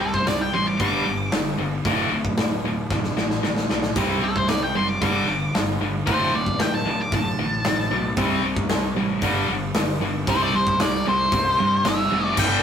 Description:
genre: quiet-loud alternative rock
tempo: 114 BPM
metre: 4/4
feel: straight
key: unclear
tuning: A4 = 442 Hz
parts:
  - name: octave-fuzz lead guitar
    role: melody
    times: 0.0-12.6 s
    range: A4 to D6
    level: -23 LUFS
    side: left 1 dB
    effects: distortion
  - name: semi-hollow electric guitar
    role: arpeggios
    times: 0.0-12.4 s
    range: D2 to C4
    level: -30 LUFS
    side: right 4 dB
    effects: none
  - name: thick fuzz guitar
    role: riff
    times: 0.0-12.6 s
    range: D2 to C4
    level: -30 LUFS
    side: right 4 dB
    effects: distortion
  - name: tight distorted guitar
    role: riff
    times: 0.0-12.6 s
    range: D2 to C4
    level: -26 LUFS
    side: left 3 dB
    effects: distortion
  - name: fuzz fingered electric bass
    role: bass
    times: 0.0-12.6 s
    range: D1 to G2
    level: -29 LUFS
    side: equal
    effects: overdrive
  - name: big rock drum kit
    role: drums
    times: 0.1-12.5 s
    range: crash cymbal, hi-hat, kick drum, snare drum, splash cymbal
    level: -25 LUFS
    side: equal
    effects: none
  - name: string machine, violas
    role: sustained chords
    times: 12.4-12.6 s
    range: G3 to D5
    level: -31 LUFS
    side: left 3 dB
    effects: ensemble chorus
room: moderate small room reverb, RT60 0.5 s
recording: rough rehearsal-room recording, warm saturation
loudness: -20 LUFS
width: side -8 dB against mid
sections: 0.0-12.4 A section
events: lead electric guitar solo 0.0-12.4; drum fill 2.9-4.0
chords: 0.0 C5; 0.8 G5; 1.9 D5; 4.0 C5; 5.0 G5; 6.1 D5; 8.2 C5; 9.2 G5; 10.3 C

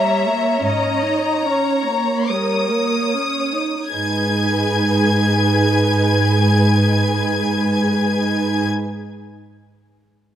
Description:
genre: classical, slow romantic movement for string orchestra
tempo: 34-44 BPM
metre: 4/4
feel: rubato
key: G# minor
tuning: A4 = 440 Hz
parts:
  - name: rich studio violin section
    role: melody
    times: 0.0-8.7 s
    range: A#5 to G#6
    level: -22 LUFS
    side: left 5 dB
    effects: none
  - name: rich studio violin section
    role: second line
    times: 0.0-8.7 s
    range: A#4 to G#5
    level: -23 LUFS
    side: left 1 dB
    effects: none
  - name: warm studio viola section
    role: accompaniment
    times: 0.0-8.7 s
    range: G3 to C#5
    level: -21 LUFS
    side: right 4 dB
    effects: none
  - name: warm studio cello section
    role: bass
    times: 0.6-8.7 s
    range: G#2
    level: -19 LUFS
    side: right 1 dB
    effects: none
room: light reverb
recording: close, detailed microphones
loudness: -16 LUFS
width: side -10 dB against mid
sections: 0.0-3.9 A section; 3.9-9.6 B section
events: slowing down 0.0-3.9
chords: 0.0 D#7/G#; 3.9 G#m

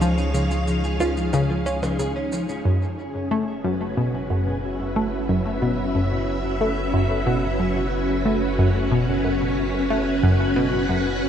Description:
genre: ambient, sequencer-driven space music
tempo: 91 BPM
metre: 4/4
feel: straight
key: F# minor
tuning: A4 = 440 Hz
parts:
  - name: string machine, full ensemble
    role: sustained chords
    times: 0.0-11.3 s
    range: G#3 to F#5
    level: -24 LUFS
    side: equal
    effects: ensemble chorus, shimmer reverb
  - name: clean electric guitar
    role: arpeggios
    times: 0.0-11.3 s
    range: E#3 to E5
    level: -33 LUFS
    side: equal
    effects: auto-pan, tape echo, shimmer reverb
  - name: analog pluck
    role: riff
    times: 0.0-11.1 s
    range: F#2 to E#4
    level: -23 LUFS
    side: equal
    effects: chorus, phaser, tape echo
  - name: round analog bass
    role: bass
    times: 0.0-11.3 s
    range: F#1 to C#2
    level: -29 LUFS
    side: equal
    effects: none
  - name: shaker and percussion blips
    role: percussion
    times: 0.0-2.6 s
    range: none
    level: -35 LUFS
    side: right 2 dB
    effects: tape echo
room: wet lush hall reverb, RT60 2.6 s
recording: cassette tape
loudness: -20 LUFS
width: side -9 dB against mid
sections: 0.0-2.7 A section; 2.7-11.3 B section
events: none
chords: 0.0 C#; 2.7 F#m7

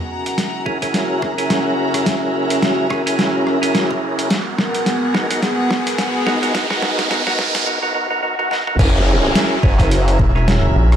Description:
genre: glitch hop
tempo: 107 BPM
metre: 4/4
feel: swing 58% on 16ths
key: unclear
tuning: A4 = 440 Hz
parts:
  - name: dark analog pad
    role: sustained chords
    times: 0.0-11.0 s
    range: B3 to A#5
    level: -24 LUFS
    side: equal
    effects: chorus, vintage 12-bit sampler grit, sidechain pumping
  - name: riser, swell and downlifter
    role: sound effects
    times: 2.2-11.0 s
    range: none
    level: -25 LUFS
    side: right 1 dB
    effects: none
  - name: warm studio string section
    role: texture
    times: 0.0-11.0 s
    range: B3 to A#5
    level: -25 LUFS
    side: left 2 dB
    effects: sidechain pumping
  - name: boom bap sampler-style drum kit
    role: drums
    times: 0.3-11.0 s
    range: crash cymbal, hi-hat, rim click, snare drum, toms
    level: -21 LUFS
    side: equal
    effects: studio reverb
  - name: overdriven tonewheel organ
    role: stabs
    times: 0.7-11.0 s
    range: B3 to A#4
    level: -20 LUFS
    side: right 1 dB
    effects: chorus vibrato, stopped rotary speaker, sidechain pumping, tape echo
  - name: electronic kick drum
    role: drums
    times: 0.7-10.3 s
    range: none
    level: -18 LUFS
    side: equal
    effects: overdrive, high-pass filter on kick, studio reverb, high-pass filter on room
  - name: formant-sweep wobble bass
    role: bass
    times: 8.8-10.2 s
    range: F#1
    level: -16 LUFS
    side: equal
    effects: chorus
  - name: rubbery square bass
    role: bass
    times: 10.2-11.0 s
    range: E1 to A#1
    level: -14 LUFS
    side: equal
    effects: none
room: light reverb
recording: played on a big sound system in a bare room, stone room reverb, high-pass filter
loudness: -15 LUFS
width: side -9 dB against mid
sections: 0.0-8.8 A section; 8.8-11.0 B section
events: build-up 0.0-8.8; drum fill 0.0-7.7, 8.4-8.8; filter sweep 0.0-8.8; riser 2.2-7.7; swell 7.7-8.8; drop 8.8-11.0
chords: 0.0 F#7; 4.3 G#m9; 8.8 F#7

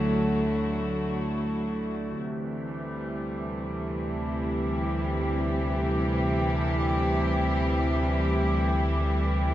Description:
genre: ambient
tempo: free time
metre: none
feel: none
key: unclear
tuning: A4 = 440 Hz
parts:
  - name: warm studio string section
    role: sustained chords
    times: 0.0-9.5 s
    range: C3 to G4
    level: -27 LUFS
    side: equal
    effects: none
  - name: warm sub bass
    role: bass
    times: 0.0-9.5 s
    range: D2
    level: -30 LUFS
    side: equal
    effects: none
  - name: overtone-sweeping drone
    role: drone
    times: 0.0-9.5 s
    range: D3 to A3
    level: -34 LUFS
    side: equal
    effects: chorus, built-in reverb
room: wet spring reverb, RT60 2.4 s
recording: none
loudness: -25 LUFS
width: side -13 dB against mid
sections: 0.0-9.5 A section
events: fade-out on synth drone 0.0-9.5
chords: 0.0 Dadd9; 2.2 C/D

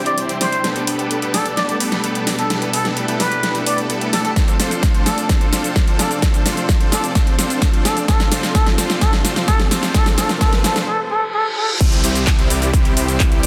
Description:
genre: EDM, festival progressive house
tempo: 129 BPM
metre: 4/4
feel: straight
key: unclear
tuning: A4 = 440 Hz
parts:
  - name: clear studio string section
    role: sustained chords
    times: 0.0-13.5 s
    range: B2 to A4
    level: -28 LUFS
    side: equal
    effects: sidechain pumping, low-pass filter
  - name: big supersaw lead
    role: riff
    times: 0.0-13.5 s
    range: G3 to D5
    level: -26 LUFS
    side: equal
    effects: sidechain pumping, low-pass filter, tape echo
  - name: trumpet with plunger mute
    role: melody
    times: 0.1-11.7 s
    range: A4 to D5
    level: -25 LUFS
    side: equal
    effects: tape echo
  - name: big-room dance drum kit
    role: drums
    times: 0.1-13.5 s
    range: crash cymbal, handclaps, hi-hat, shaker, snare drum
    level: -23 LUFS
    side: equal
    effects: none
  - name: electronic kick drum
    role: drums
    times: 4.4-13.3 s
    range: none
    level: -18 LUFS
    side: equal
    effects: none
  - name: riser, reverse cymbal and downlifter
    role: sound effects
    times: 8.7-13.5 s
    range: none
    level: -30 LUFS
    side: equal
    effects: none
  - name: detuned saw bass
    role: bass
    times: 11.8-13.5 s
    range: C2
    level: -24 LUFS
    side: equal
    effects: chorus, sidechain pumping
room: moderate digital room reverb, RT60 1.3 s, digital ambience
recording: dense, heavily limited modern master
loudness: -17 LUFS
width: mono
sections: 0.0-11.8 A section; 11.8-13.5 B section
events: build-up 0.0-11.8; drum fill 0.0-10.9; reverse cymbal 10.9-11.8; drop 11.8-13.5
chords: 0.0 C; 0.6 Gadd9; 4.4 Dm7; 11.8 C

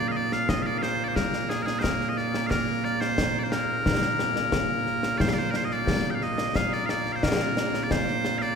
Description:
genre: scottish traditional, Scottish pipe music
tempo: 89 BPM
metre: 2/4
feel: straight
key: Bb major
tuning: A4 = 439 Hz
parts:
  - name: loud bright bagpipes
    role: melody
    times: 0.0-8.6 s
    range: Bb2 to G5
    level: -26 LUFS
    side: right 1 dB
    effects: none
  - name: concert snare drum and concert bass drum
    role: drums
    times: 0.3-8.5 s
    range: none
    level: -27 LUFS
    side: left 1 dB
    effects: none
room: wet cathedral reverb, RT60 4.5 s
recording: recorded in a church or concert hall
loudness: -23 LUFS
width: side -6 dB against mid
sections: 0.0-5.2 A section; 5.2-8.6 B section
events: none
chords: none

